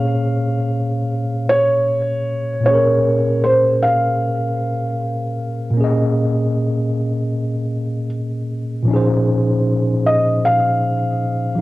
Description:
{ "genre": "hip hop", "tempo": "77 BPM", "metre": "4/4", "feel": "swing 64% on 16ths", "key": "Bb minor", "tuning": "A4 = 440 Hz", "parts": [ { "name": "felt-muted upright piano", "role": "melody", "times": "0.0-11.6 s", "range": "C5 to F5", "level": "-18 LUFS", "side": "equal", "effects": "low-pass filter, cassette tape" }, { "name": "mellow tine electric piano", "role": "accompaniment", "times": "0.0-11.6 s", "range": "Bb2 to Eb5", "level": "-18 LUFS", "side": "equal", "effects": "medium stereo tremolo, cassette tape, low-pass filter" } ], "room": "light reverb", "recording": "home recording on cassette", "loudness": "-16 LUFS", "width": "side -18 dB against mid", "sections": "0.0-8.9 A section; 8.9-11.6 B section", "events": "none", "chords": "0.0 Bbm9; 8.9 Bbm11", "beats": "0.31 1.09 1.87 | 2.65 3.43 4.21 4.99 | 5.77 6.55 7.33 8.11 | 8.89 9.66 10.44 11.22" }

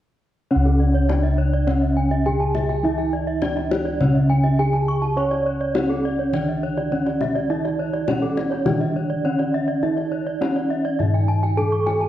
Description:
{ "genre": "Balinese gamelan", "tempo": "103 BPM", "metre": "4/4", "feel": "straight", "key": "C# pelog", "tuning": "A4 = 440 Hz", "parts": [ { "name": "gamelan-type bronze metallophone", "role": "melody", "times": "0.5-12.1 s", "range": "C#4 to C#5", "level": "-24 LUFS", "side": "equal", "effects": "none" }, { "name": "gamelan-type bronze metallophone", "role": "accompaniment", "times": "0.5-12.1 s", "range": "C#3 to C#4", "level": "-28 LUFS", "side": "right 2 dB", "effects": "none" }, { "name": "gamelan-type bronze metallophone", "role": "arpeggios", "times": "0.5-12.0 s", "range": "C#5 to C#6", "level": "-29 LUFS", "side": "left 4 dB", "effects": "tape echo" }, { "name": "gamelan-type bossed gongs", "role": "bass", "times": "0.5-12.1 s", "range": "C#2 to C#5", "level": "-23 LUFS", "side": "equal", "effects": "none" }, { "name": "gamelan-type bronze metallophone", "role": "arpeggios", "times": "0.7-12.1 s", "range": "A4-40c to C#6", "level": "-29 LUFS", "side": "right 5 dB", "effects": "none" }, { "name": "kendang", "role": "percussion", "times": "0.7-12.1 s", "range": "none", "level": "-29 LUFS", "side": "left 3 dB", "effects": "none" } ], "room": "moderate recital hall reverb, RT60 1.6 s", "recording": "worn, warbling old tape, cassette tape, warbly pitch drift", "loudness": "-18 LUFS", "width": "side -12 dB against mid", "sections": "0.5-12.1 A section", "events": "none", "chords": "none", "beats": "| 0.51 1.09 1.67 2.25 | 2.84 3.42 4.00 4.58 | 5.17 5.75 6.33 6.91 | 7.50 8.08 8.66 9.24 | 9.83 10.41 10.99 11.57" }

